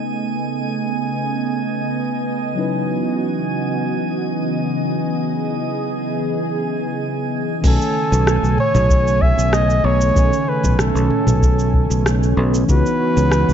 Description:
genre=sunset chillout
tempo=95 BPM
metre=4/4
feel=straight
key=unclear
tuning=A4 = 440 Hz
part: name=mellow tine electric piano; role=accompaniment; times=0.0-13.5 s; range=D#3 to G#5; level=-26 LUFS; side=moving between left 5 dB and right 5 dB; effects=auto-pan, digital delay
part: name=lush unison pad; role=sustained chords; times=0.0-13.5 s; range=C#3 to G#5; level=-22 LUFS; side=right 1 dB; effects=chorus
part: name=drifting glass-harmonics texture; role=texture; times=0.0-7.7 s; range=G#5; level=-29 LUFS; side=right 4 dB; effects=chorus, built-in reverb
part: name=fingered electric bass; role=bass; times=7.6-13.5 s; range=B1 to C#2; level=-17 LUFS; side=equal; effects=none
part: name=electronic kick drum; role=drums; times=7.6-12.8 s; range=none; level=-17 LUFS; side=equal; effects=none
part: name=smooth R&B drum kit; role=drums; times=7.6-13.5 s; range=cabasa, crash cymbal, rim click, toms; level=-24 LUFS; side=right 1 dB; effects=none
part: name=warm flugelhorn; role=melody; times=7.7-13.5 s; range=A4 to E5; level=-20 LUFS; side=right 1 dB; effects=digital delay
room=light reverb, digital ambience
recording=dark, warm production, nothing above 7.6 kHz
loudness=-16 LUFS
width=side -8 dB against mid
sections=0.0-7.6 A section; 7.6-13.5 B section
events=filter sweep on analog synth pad 0.0-7.6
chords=0.0 B13; 2.6 C#m11; 7.6 B13; 12.7 C#m11

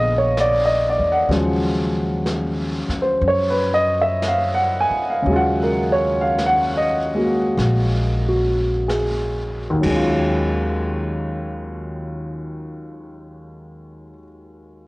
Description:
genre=jazz ballad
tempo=39-64 BPM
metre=4/4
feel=swing 66% on 8ths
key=Eb minor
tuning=A4 = 440 Hz
part: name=warm baby grand piano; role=accompaniment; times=0.0-14.9 s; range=Eb2 to Ab5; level=-19 LUFS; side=equal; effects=none
part: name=upright bass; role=bass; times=0.0-14.1 s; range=Bb1 to Gb2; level=-24 LUFS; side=equal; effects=none
part: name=jazz brush drum kit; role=drums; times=0.4-10.1 s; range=brushed snare drum, crash cymbal, hi-hat, kick drum, snare drum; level=-32 LUFS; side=equal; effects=cassette tape
room=light reverb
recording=home recording on cassette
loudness=-17 LUFS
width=side -22 dB against mid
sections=0.0-10.3 A section; 10.3-14.9 B section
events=slowing down 1.3-10.3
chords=0.0 Bb7b9; 1.3 Ebm11

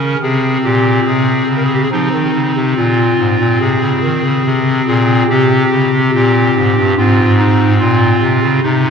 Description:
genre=classical, chorale-style piece for pipe organ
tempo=71 BPM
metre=4/4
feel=rubato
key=unclear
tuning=A4 = 440 Hz
part: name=pipe organ, clarinet reed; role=solo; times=0.0-8.9 s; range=G2 to Bb4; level=-10 LUFS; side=equal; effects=none
room=wet church reverb, RT60 2.8 s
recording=dark, warm production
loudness=-10 LUFS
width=side -6 dB against mid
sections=0.0-8.9 A section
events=none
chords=0.2 Bbm13; 1.9 Fm; 5.3 C5; 7.0 Fm/Ab

